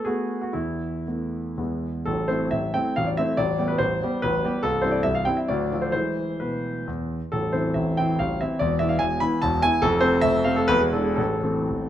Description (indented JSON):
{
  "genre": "classical, romantic triple-time dance for piano with dotted rhythms",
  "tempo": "112-158 BPM",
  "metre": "3/4",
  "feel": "rubato",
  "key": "A minor",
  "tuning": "A4 = 437 Hz",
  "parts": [
    { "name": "warm grand piano", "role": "solo", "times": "0.0-11.9 s", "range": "A0 to B5", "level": "-21 LUFS", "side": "equal", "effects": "none" }
  ],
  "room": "moderate recital hall reverb, RT60 1.8 s",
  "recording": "close, detailed microphones",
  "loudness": "-21 LUFS",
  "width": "side -11 dB against mid",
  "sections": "0.0-2.1 A section; 2.1-11.9 B section",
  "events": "none",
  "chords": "0.0 B7(no3); 0.6 Esus4; 1.6 E; 2.1 Am; 3.4 G/A; 4.6 C; 5.5 Dm; 5.9 E; 7.3 Am; 8.6 E5; 9.8 F; 10.7 E7; 11.2 Am"
}